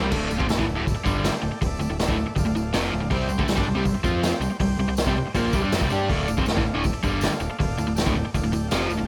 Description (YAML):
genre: garage rock duo or trio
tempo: 160 BPM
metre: 4/4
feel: straight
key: D minor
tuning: A4 = 439 Hz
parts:
  - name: overdriven combo organ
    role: sustained chords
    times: 0.0-9.1 s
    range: G4 to A5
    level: -37 LUFS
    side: equal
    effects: none
  - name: overdriven electric guitar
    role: riff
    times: 0.0-9.1 s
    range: D2 to G4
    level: -27 LUFS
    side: equal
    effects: none
  - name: growling picked electric bass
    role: bass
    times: 0.0-9.1 s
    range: D1 to G2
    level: -32 LUFS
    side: equal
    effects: overdrive
  - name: raw garage drum kit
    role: drums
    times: 0.1-8.8 s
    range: crash cymbal, hi-hat, kick drum, snare drum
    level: -28 LUFS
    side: equal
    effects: none
  - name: tambourine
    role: percussion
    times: 0.3-9.0 s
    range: none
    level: -43 LUFS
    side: equal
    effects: none
room: light reverb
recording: none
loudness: -24 LUFS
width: mono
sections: 0.1-9.1 A section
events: transistor combo organ fill 8.3-9.1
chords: 0.1 Dm; 3.1 C5; 6.1 Dm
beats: | 0.12 0.49 0.86 1.24 | 1.61 1.99 2.36 2.73 | 3.11 3.48 3.86 4.23 | 4.61 4.98 5.35 5.73 | 6.10 6.47 6.85 7.22 | 7.59 7.97 8.34 8.71